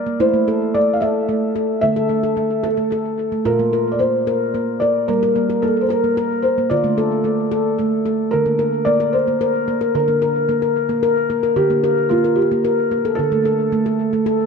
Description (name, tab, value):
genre	world meditative, meditative tuned percussion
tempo	74 BPM (dotted quarters)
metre	6/8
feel	straight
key	unclear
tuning	A4 = 440 Hz
part	felt-muted upright piano	melody	0.0-14.5 s	F4 to F5	-20 LUFS	right 1 dB	tape echo
part	handpan	arpeggios	0.0-14.5 s	Bb2 to Bb4	-18 LUFS	left 1 dB	tape echo
room	wet spring reverb, RT60 1.6 s, small room ambience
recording	echo-heavy mix, nothing above 10.7 kHz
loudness	-16 LUFS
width	side -5 dB against mid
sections	0.0-8.3 A section; 8.3-14.5 B section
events	none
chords	0.2 Am; 1.8 D5; 3.5 Bb5; 5.1 Gm; 6.7 D5; 8.3 Bb/D; 11.6 Gm/D; 13.2 D5